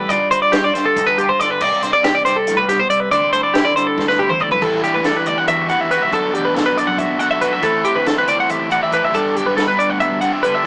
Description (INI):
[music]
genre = math rock and midwest emo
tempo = 279 BPM (eighths)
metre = 7/8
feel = straight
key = G major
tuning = A4 = 441 Hz
[part]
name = twelve-string electric guitar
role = accompaniment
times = 0.0-10.7 s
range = G2 to D5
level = -27 LUFS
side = equal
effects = none
[part]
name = twelve-string electric guitar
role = arpeggios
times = 0.0-10.7 s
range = G4 to F#5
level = -18 LUFS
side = equal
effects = none
[part]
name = growling fingered electric bass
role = bass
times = 0.0-10.5 s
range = F#1 to D3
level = -31 LUFS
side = equal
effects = overdrive
[part]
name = compact cocktail drum kit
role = drums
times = 0.1-10.5 s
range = crash cymbal, hi-hat, kick drum, snare drum, toms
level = -27 LUFS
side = equal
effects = none
[part]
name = overdriven electric guitar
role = riff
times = 4.6-10.7 s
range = A2 to G4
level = -25 LUFS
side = equal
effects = none
[sound]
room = light reverb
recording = rough rehearsal-room recording, tube saturation, small speaker sound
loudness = -17 LUFS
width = mono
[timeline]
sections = 0.0-4.6 A section; 4.6-10.7 B section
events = drum fill 4.0-4.6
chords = 0.1 G7b13; 1.6 Cmadd9; 3.1 D9sus4; 4.6 Em9; 6.1 Bm7; 7.6 Am9; 9.1 Gmaj9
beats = | 0.10 0.32 0.53 0.75 0.96 1.18 1.39 | 1.61 1.82 2.04 2.25 2.47 2.69 2.90 | 3.12 3.33 3.54 3.76 3.98 4.19 4.41 | 4.62 4.84 5.05 5.27 5.48 5.70 5.91 | 6.13 6.34 6.56 6.78 6.99 7.21 7.42 | 7.64 7.85 8.07 8.28 8.50 8.71 8.93 | 9.14 9.36 9.57 9.79 10.00 10.22 10.43 | 10.65